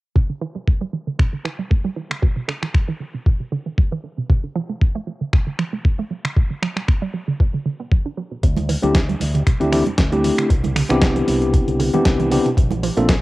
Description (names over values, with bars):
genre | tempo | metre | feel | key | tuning
nu-disco, nu disco | 116 BPM | 4/4 | swing 54% on 16ths | unclear | A4 = 440 Hz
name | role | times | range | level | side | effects
wide unison pluck | arpeggios | 0.2-13.2 s | B2 to D4 | -25 LUFS | right 4 dB | sidechain pumping, cassette tape, analog delay
electronic kick drum | drums | 0.2-13.2 s | none | -16 LUFS | equal | cassette tape
dusty soul sampler-style drum kit | drums | 1.2-13.2 s | finger snaps, hi-hat, snare drum | -25 LUFS | equal | cassette tape
fingered electric bass with an envelope filter | bass | 8.4-13.2 s | Bb1 to D2 | -23 LUFS | equal | sidechain pumping
congas | percussion | 8.6-12.8 s | none | -28 LUFS | right 6 dB | none
tine electric piano | accompaniment | 8.8-13.1 s | A3 to A4 | -19 LUFS | left 1 dB | medium stereo tremolo, sidechain pumping, cassette tape, analog delay
room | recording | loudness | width
light reverb | home recording on cassette | -17 LUFS | side -18 dB against mid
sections
0.2-13.2 A section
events
filter sweep on synth arpeggio sound 0.2-13.2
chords
0.2 Dsus4; 2.2 Cadd9; 4.3 Bbmaj9; 6.1 Gmaj7 (rootless); 8.4 D9sus4; 10.5 Cmaj9; 12.6 Bbmaj9